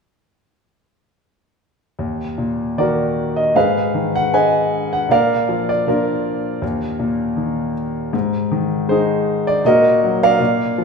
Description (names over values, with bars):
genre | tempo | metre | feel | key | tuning
classical, lyrical solo piano | 79 BPM | 4/4 | rubato | Eb harmonic minor | A4 = 441 Hz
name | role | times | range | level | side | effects
clear concert grand piano | solo | 2.0-10.8 s | Eb2 to Ab5 | -15 LUFS | equal | none
room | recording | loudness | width
wet recital hall reverb, RT60 1.5 s | minimal, uncompressed stereo recording | -15 LUFS | side -5 dB against mid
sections
2.0-10.8 A section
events
none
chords
2.0 Ebm; 3.6 Abm; 5.1 Bb; 6.6 Eb5; 8.1 Ab5; 9.6 Ebm/Bb